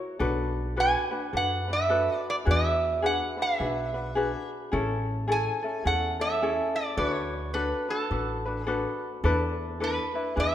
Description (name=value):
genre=Hawaiian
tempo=106 BPM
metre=4/4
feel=swing 62% on 8ths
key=unclear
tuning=A4 = 439 Hz
part: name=ukulele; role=accompaniment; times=0.0-10.5 s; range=C#4 to C#5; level=-30 LUFS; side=left 3 dB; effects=none
part: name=upright bass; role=bass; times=0.2-10.5 s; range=A1 to F#2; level=-31 LUFS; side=equal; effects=none
part: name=metal-body resonator slide guitar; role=melody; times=0.8-10.5 s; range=A4 to G#5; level=-27 LUFS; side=right 2 dB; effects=none
room=moderate recital hall reverb, RT60 1.9 s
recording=minimal, uncompressed stereo recording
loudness=-25 LUFS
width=side -11 dB against mid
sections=0.0-10.5 A section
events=none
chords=0.2 Bm7; 2.5 E9; 4.7 Amaj7; 7.0 D6; 9.2 E7sus4